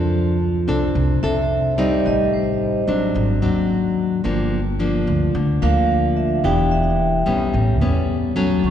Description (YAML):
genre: bossa nova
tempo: 109 BPM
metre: 4/4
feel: straight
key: unclear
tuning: A4 = 440 Hz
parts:
  - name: nylon-string guitar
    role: accompaniment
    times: 0.0-8.7 s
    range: G2 to A4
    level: -20 LUFS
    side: left 2 dB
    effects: none
  - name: upright bass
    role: bass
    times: 0.0-8.7 s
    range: E1 to F2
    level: -21 LUFS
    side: right 1 dB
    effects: none
  - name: vibraphone with medium hard mallets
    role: accompaniment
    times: 1.2-8.7 s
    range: D4 to C#6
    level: -23 LUFS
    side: right 3 dB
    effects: none
room: wet church reverb, RT60 3.2 s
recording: recorded in a church or concert hall, nothing above 10.3 kHz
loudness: -17 LUFS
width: side -10 dB against mid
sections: 0.0-8.6 A section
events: vibraphone solo 0.0-8.6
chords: 0.0 F6; 2.1 Am7b5; 3.1 G#7#11; 4.2 Gm7; 6.4 Em7; 7.5 A9